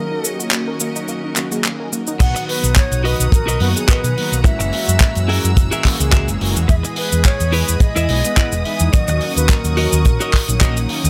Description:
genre	nu-disco, nu disco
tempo	107 BPM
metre	4/4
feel	swing 55% on 16ths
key	B major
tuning	A4 = 440 Hz
part	mellow hollow silver concert flute	melody	0.0-10.9 s	A#4 to F#5	-27 LUFS	equal	delay
part	mellow synth brass	accompaniment	0.0-11.1 s	D#3 to D#5	-27 LUFS	equal	chorus, sidechain pumping
part	bright symphonic string section	sustained chords	0.0-11.1 s	C#4 to E6	-31 LUFS	equal	sidechain pumping
part	analog pluck	arpeggios	0.0-2.1 s	A#3 to A#4	-30 LUFS	equal	chorus, phaser, sidechain pumping, delay
part	tight funk drum kit	drums	0.2-11.1 s	cabasa, crash cymbal, handclaps, hi-hat	-23 LUFS	equal	small room reverb
part	clean electric guitar	riff	2.2-10.9 s	E4 to F#5	-26 LUFS	equal	lush chorus
part	hollow-body short-scale fingered electric bass	bass	2.2-11.1 s	E1 to B2	-20 LUFS	equal	none
part	kick drum	drums	2.2-10.7 s	none	-17 LUFS	equal	small room reverb
room	little or no reverb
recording	none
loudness	-16 LUFS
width	mono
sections	0.0-2.2 A section; 2.2-11.1 B section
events	drop 2.2-11.1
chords	0.0 D#m7; 2.2 Bmaj7; 4.4 F#9; 6.7 Emaj7; 8.9 D#m7

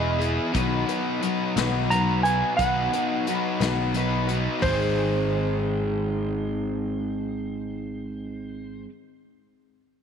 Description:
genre	folk rock and heartland rock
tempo	59 BPM (dotted quarters)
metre	6/8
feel	straight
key	unclear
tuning	A4 = 440 Hz
part	clean lap steel guitar	melody	0.0-8.8 s	C5 to Bb5	-27 LUFS	right 3 dB	none
part	picked twelve-string acoustic guitar	accompaniment	0.0-8.9 s	Ab2 to B4	-29 LUFS	left 6 dB	none
part	crunchy overdriven guitar	riff	0.0-8.9 s	B2 to C5	-28 LUFS	right 1 dB	none
part	picked electric bass	bass	0.0-8.8 s	E1 to B1	-29 LUFS	right 1 dB	none
part	natural country drum kit	drums	0.2-4.8 s	hi-hat, kick drum, snare drum, toms	-31 LUFS	left 3 dB	none
room	moderate echo chamber reverb, RT60 2.8 s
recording	1960s-style stereo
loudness	-22 LUFS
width	side -7 dB against mid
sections	0.0-4.6 A section; 4.6-8.7 B section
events	none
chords	0.0 E; 0.5 B; 4.6 Ab

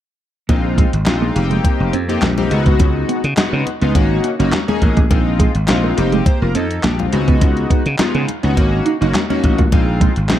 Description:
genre	early-eighties boogie funk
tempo	104 BPM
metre	4/4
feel	straight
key	Bb minor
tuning	A4 = 442 Hz
part	chorused polysynth	accompaniment	0.5-10.4 s	Ab3 to C5	-19 LUFS	left 2 dB	none
part	mellow electric guitar	riff	0.5-10.1 s	Ab3 to F4	-23 LUFS	right 6 dB	analog chorus
part	slap bass	bass	0.5-10.4 s	F1 to Db3	-18 LUFS	equal	none
part	clean 12-bit digital drum machine	drums	0.5-10.4 s	handclaps, hi-hat, kick drum, snare drum	-16 LUFS	equal	none
part	congas	percussion	0.5-10.4 s	none	-26 LUFS	left 8 dB	none
room	light reverb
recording	dark, warm production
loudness	-13 LUFS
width	side -12 dB against mid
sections	0.5-10.4 A section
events	none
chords	0.5 Bb9sus4; 1.4 F9sus4; 2.5 Db9sus4; 4.0 Ab9sus4; 5.1 Bb9sus4; 6.0 F9sus4; 7.1 Db9sus4; 8.6 Ab9sus4; 9.7 Bb9sus4

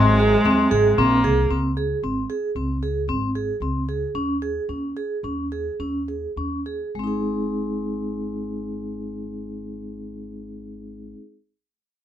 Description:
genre	contemporary instrumental, chamber music in an uneven meter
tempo	102-114 BPM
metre	5/4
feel	straight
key	Ab mixolydian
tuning	A4 = 444 Hz
part	warm viola	second line	0.0-1.5 s	Ab3 to Bb3	-22 LUFS	equal	none
part	clear woodwind section	sustained chords	0.0-1.5 s	C3 to Ab3	-27 LUFS	left 3 dB	none
part	vibraphone with medium mallets	arpeggios	0.0-11.2 s	Ab3 to Ab4	-24 LUFS	right 1 dB	none
part	upright bass	bass	0.0-11.1 s	Ab1 to Eb2	-25 LUFS	equal	none
room	light reverb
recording	close, detailed microphones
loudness	-21 LUFS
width	side -10 dB against mid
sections	0.0-1.5 A section; 1.5-6.9 B section; 6.9-9.9 C section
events	slowing down 2.6-6.9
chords	0.0 Ab9; 1.5 Db5; 4.1 Absus4/Eb; 6.9 Ab

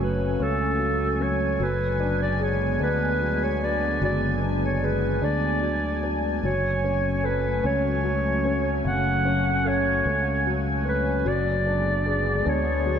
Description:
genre	pop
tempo	50 BPM (dotted quarters)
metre	6/8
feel	straight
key	F# minor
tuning	A4 = 440 Hz
part	warm clarinet	melody	0.0-13.0 s	A4 to F#5	-26 LUFS	equal	ping-pong delay
part	warm upright piano	accompaniment	0.0-13.0 s	C#3 to A4	-29 LUFS	left 4 dB	analog chorus
part	lush unison pad	sustained chords	0.0-13.0 s	D3 to G#5	-29 LUFS	right 1 dB	chorus
part	fingered electric bass	bass	0.0-13.0 s	F#1 to D2	-27 LUFS	right 1 dB	none
room	wet church reverb, RT60 3.8 s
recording	dreamy mix soaked in reverb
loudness	-22 LUFS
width	side -8 dB against mid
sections	0.0-13.0 A section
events	none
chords	0.0 F#madd9; 1.6 G#dim/F#; 6.4 F#madd9; 11.3 G#dim/F#

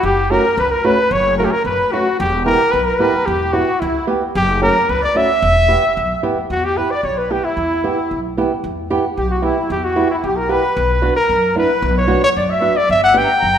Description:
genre	klezmer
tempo	112 BPM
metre	2/4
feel	straight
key	E dorian sharp4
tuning	A4 = 439 Hz
part	warm cornet	melody	0.0-13.6 s	E4 to G5	-16 LUFS	equal	none
part	accordion	second line	0.0-13.6 s	E4 to A#5	-22 LUFS	left 1 dB	light tremolo tuning
part	upright bass	bass	0.0-13.6 s	E1 to F#2	-22 LUFS	equal	none
part	flamenco guitar	accompaniment	0.3-13.3 s	A3 to G4	-21 LUFS	right 3 dB	none
room	wet recital hall reverb, RT60 1.8 s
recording	minimal, uncompressed stereo recording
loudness	-14 LUFS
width	side -9 dB against mid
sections	0.0-6.5 A section; 6.5-13.6 B section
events	speeding up 0.0-13.6; cornet solo 6.5-13.6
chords	0.0 F#m; 2.2 Em; 4.4 F#m; 5.4 Em; 10.8 Bm; 12.9 G

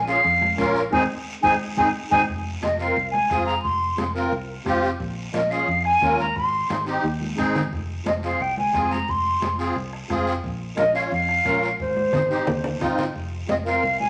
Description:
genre	latin, cumbia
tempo	177 BPM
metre	4/4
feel	straight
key	F minor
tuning	A4 = 439 Hz
part	hollow silver concert flute	melody	0.0-14.1 s	C5 to C6	-24 LUFS	equal	none
part	fingered electric bass	bass	0.0-14.1 s	F1 to F2	-33 LUFS	equal	none
part	musette accordion	accompaniment	0.1-13.8 s	C4 to Db5	-28 LUFS	equal	none
part	guiro	percussion	0.1-14.1 s	none	-42 LUFS	equal	none
part	congas	percussion	0.2-14.1 s	none	-34 LUFS	equal	none
part	bombo	percussion	0.4-13.0 s	none	-40 LUFS	equal	none
room	wet large studio reverb, RT60 1.0 s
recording	vinyl crackle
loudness	-23 LUFS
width	mono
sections	0.0-2.3 A section; 2.3-13.2 B section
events	flute solo 0.0-2.3; band accent 0.9-2.3; drum fill 7.2-7.7, 11.8-13.2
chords	0.0 Bbm; 0.9 Ab; 2.3 Fm; 5.0 Bbm; 6.4 Ab; 7.7 Fm; 10.4 Bbm; 11.8 Ab; 13.2 F5

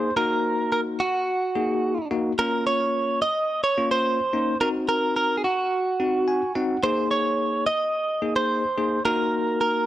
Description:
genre	pop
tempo	108 BPM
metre	4/4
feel	straight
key	unclear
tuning	A4 = 441 Hz
part	direct-recorded clean electric guitar	melody	0.0-9.9 s	Gb4 to Eb5	-23 LUFS	right 2 dB	none
part	bell-like tine electric piano	accompaniment	0.0-9.9 s	Bb3 to Ab5	-26 LUFS	left 3 dB	fast stereo tremolo
room	light reverb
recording	dry, gritty hardware recording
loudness	-21 LUFS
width	side -13 dB against mid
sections	0.0-9.9 A section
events	tine electric piano fill 6.0-6.8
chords	0.2 Ebm; 2.4 Bbm; 4.6 Cdim; 6.8 Absus2; 9.1 Ebm

